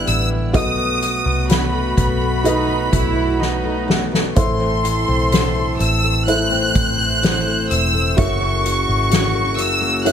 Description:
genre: pop ballad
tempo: 63 BPM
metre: 4/4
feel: straight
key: unclear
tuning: A4 = 440 Hz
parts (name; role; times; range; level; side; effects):
- warm studio violin section; melody; 0.0-10.1 s; B5 to F#6; -21 LUFS; equal; none
- felt-muted upright piano; accompaniment; 0.0-10.1 s; A2 to E5; -25 LUFS; right 1 dB; none
- warm brass ensemble; sustained chords; 0.0-10.1 s; B2 to C5; -25 LUFS; right 3 dB; none
- picked steel-string acoustic guitar; arpeggios; 0.0-10.1 s; F#2 to F#4; -25 LUFS; left 7 dB; tape echo
- vintage muted fingered electric bass; bass; 0.0-10.1 s; E1 to C2; -22 LUFS; equal; none
- soft-mallet drum kit; drums; 0.1-10.1 s; hi-hat, kick drum, snare drum; -20 LUFS; equal; none
- warm chamber cello section; second line; 2.5-4.1 s; D#4 to E4; -23 LUFS; right 6 dB; none
room: studio reverb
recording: none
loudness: -15 LUFS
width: side -8 dB against mid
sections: 0.0-10.1 A section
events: drum fill 3.4-4.4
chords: 0.0 Em7; 0.5 B7; 4.4 Am; 8.2 F#7

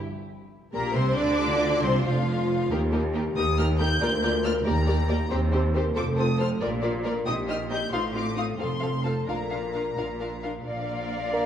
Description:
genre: classical, dramatic, fast romantic movement for symphony orchestra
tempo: 91 BPM (dotted quarters)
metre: 6/8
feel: straight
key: Bb major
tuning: A4 = 441 Hz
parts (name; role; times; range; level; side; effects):
- mellow French horn section; sustained chords; 0.0-11.5 s; F3 to C5; -32 LUFS; left 4 dB; none
- warm symphonic violin section; melody; 0.7-11.5 s; Bb4 to G6; -32 LUFS; left 3 dB; none
- warm symphonic violin section; second line; 0.7-11.5 s; F4 to F5; -32 LUFS; left 2 dB; none
- rich symphonic viola section; accompaniment; 0.7-11.5 s; F3 to D5; -32 LUFS; right 1 dB; none
- clear symphonic double bass section; bass; 0.7-11.5 s; F1 to Eb2; -29 LUFS; right 1 dB; none
- rich symphonic cello section; bass; 0.7-11.5 s; D2 to D3; -31 LUFS; right 2 dB; none
- clear clarinet; second line; 10.7-11.5 s; D5; -35 LUFS; left 3 dB; none
- mellow flute section; second line; 10.7-11.5 s; F5; -36 LUFS; left 2 dB; none
- mellow bassoon; accompaniment; 11.3-11.5 s; Bb3; -25 LUFS; right 2 dB; none
room: wet concert hall reverb, RT60 2.0 s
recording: small room ambience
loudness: -23 LUFS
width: side -9 dB against mid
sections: 0.1-10.7 A section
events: none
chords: 0.1 Bb; 1.4 F5; 2.1 N.C.; 2.7 Eb; 4.0 Bb/D; 4.7 Ebmaj7; 5.3 Cm/Eb; 6.0 F; 6.6 Bb; 7.3 Cm7/Bb; 7.9 F7/A; 8.6 F; 9.3 Bb

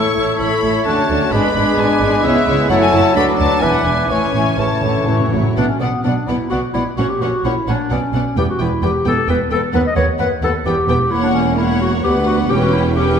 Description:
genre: quick classical-period movement for symphony orchestra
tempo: 130 BPM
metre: 3/4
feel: rubato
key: A major, B minor from 5.6 s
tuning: A4 = 441 Hz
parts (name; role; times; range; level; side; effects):
- rich studio violin section; melody; 0.0-13.2 s; E5 to C#6; -24 LUFS; left 4 dB; none
- clear oboe; second line; 0.0-5.3 s; A4 to C#5; -23 LUFS; equal; none
- concert flute; second line; 0.0-5.3 s; C#6 to F#6; -24 LUFS; left 1 dB; none
- warm studio violin section; second line; 0.0-13.2 s; E4 to D5; -24 LUFS; left 4 dB; none
- warm bassoon; accompaniment; 0.0-5.3 s; E3 to A3; -20 LUFS; right 1 dB; none
- warm studio viola section; accompaniment; 0.0-13.2 s; C#3 to E4; -22 LUFS; right 2 dB; none
- mellow French horn section; sustained chords; 0.0-5.3 s; A3 to F#4; -23 LUFS; left 4 dB; none
- rich studio cello section; bass; 0.2-13.2 s; D2 to D3; -22 LUFS; right 2 dB; none
- rich studio double bass section; bass; 0.2-13.2 s; E1 to D#2; -22 LUFS; right 2 dB; none
- timpani; percussion; 4.1-5.5 s; A2; -22 LUFS; right 1 dB; none
- warm clarinet; second line; 5.6-13.2 s; B3 to D#5; -19 LUFS; left 1 dB; none
room: wet scoring stage reverb, RT60 1.7 s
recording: minimal, uncompressed stereo recording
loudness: -14 LUFS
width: side -7 dB against mid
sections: 0.0-5.6 A section; 5.6-13.2 B section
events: timpani fill 4.1-5.6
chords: 0.0 A; 0.9 Dmaj7; 1.3 G#dim; 2.2 C#m7; 2.7 F#m7; 3.2 Bm7/D; 3.6 E7; 4.1 A; 5.6 Bm; 7.0 F#/A#; 7.9 Bm; 8.4 Em; 9.7 B/D#; 10.7 Em; 11.1 F#7/E; 12.0 Bm/D; 12.5 C#m7b5/E

